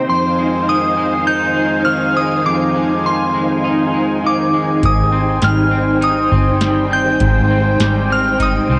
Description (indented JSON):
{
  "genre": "dream pop",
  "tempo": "101 BPM",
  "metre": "4/4",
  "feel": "straight",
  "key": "unclear",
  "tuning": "A4 = 440 Hz",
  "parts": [
    { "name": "string machine, cellos", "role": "sustained chords", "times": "0.0-8.8 s", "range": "Eb4 to Ab5", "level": "-20 LUFS", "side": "equal", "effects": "ensemble chorus, cassette tape" },
    { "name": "electric guitar at the edge of break-up", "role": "arpeggios", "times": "0.0-8.8 s", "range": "F2 to G4", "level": "-23 LUFS", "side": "equal", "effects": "analog chorus, cassette tape, analog delay" },
    { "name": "glassy synth bell", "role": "melody", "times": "0.1-8.8 s", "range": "C6 to G6", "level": "-20 LUFS", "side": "equal", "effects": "chorus, cassette tape" },
    { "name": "vintage muted fingered electric bass", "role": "bass", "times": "4.8-8.8 s", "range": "G1 to C2", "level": "-20 LUFS", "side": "equal", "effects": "none" },
    { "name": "booming analog drum machine", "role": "drums", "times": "4.8-8.6 s", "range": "hi-hat, kick drum, snare drum", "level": "-20 LUFS", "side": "equal", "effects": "cassette tape" }
  ],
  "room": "light reverb",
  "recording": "home recording on cassette",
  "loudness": "-15 LUFS",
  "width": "mono",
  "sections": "0.0-8.8 A section",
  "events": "none",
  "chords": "0.1 Fm7; 4.8 Abmaj7",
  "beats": "| 0.08 0.68 1.27 1.86 | 2.46 3.05 3.65 4.24 | 4.83 5.43 6.02 6.62 | 7.21 7.81 8.40"
}